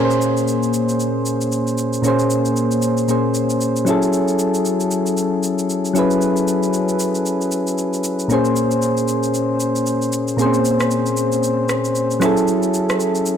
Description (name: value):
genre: amapiano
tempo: 115 BPM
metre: 4/4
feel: swing 58% on 16ths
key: Bb minor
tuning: A4 = 440 Hz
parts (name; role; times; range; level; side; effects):
- soft electric-piano-like synth keys; accompaniment; 0.0-13.4 s; Bb2 to C5; -16 LUFS; equal; chorus
- electronic shaker and rim click; drums; 0.1-13.4 s; none; -26 LUFS; right 1 dB; none
room: light reverb, digital ambience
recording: blown-out, overdriven recording, overdrive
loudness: -16 LUFS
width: side -8 dB against mid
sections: 0.0-13.4 A section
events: none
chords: 0.0 Bbm9; 3.9 Gbm9; 8.3 Bbm9; 12.2 Gbm9